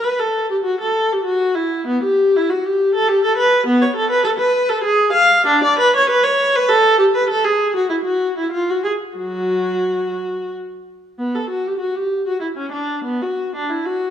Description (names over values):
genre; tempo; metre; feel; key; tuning
classical, baroque-style suite movement for unaccompanied viola; 87-107 BPM; 3/4; rubato; F# minor from 3.7 s; A4 = 440 Hz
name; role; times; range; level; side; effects
warm viola; solo; 0.0-14.1 s; F#3 to E#5; -15 LUFS; equal; none
room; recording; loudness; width
moderate recital hall reverb, RT60 1.4 s; none; -15 LUFS; side -9 dB against mid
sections
0.0-11.2 A section; 11.2-14.1 A section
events
none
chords
none